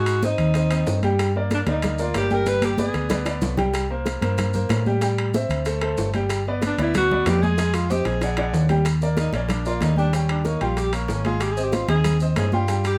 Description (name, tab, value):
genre	Afro-Cuban jazz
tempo	188 BPM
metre	4/4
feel	straight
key	Eb major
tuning	A4 = 441 Hz
part	clear alto saxophone	melody	0.0-3.2, 6.7-13.0 s	Bb3 to B4	-28 LUFS	equal	none
part	clear baby grand piano	accompaniment	0.0-13.0 s	G3 to Ab5	-29 LUFS	equal	none
part	hollow-body short-scale fingered electric bass	bass	0.0-13.0 s	G1 to A2	-25 LUFS	equal	none
part	bongos	percussion	0.1-13.0 s	none	-35 LUFS	equal	none
part	congas	percussion	0.1-13.0 s	none	-31 LUFS	equal	none
part	maracas	percussion	0.1-13.0 s	none	-42 LUFS	equal	none
part	timbales	percussion	0.1-13.0 s	none	-35 LUFS	equal	none
room	light reverb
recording	none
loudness	-22 LUFS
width	mono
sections	0.0-8.9 A section; 8.9-13.0 B section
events	drum fill 2.5-3.7, 7.6-8.9; alto saxophone solo 8.9-13.0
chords	0.0 Ab7; 1.2 Gm; 2.5 G; 3.7 C5; 5.0 Am7; 5.7 D5; 6.3 Gmaj7; 7.6 Fm7; 8.2 Bbaug7; 8.9 Ebmaj7; 10.1 Eb7; 11.4 Abmaj7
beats	0.23 0.55 0.87 | 1.19 1.51 1.83 2.15 | 2.47 2.79 3.11 3.43 | 3.75 4.07 4.39 4.71 | 5.03 5.34 5.66 5.98 | 6.30 6.62 6.94 7.26 | 7.58 7.90 8.22 8.54 | 8.86 9.18 9.50 9.81 | 10.13 10.45 10.77 11.09 | 11.41 11.73 12.05 12.37 | 12.69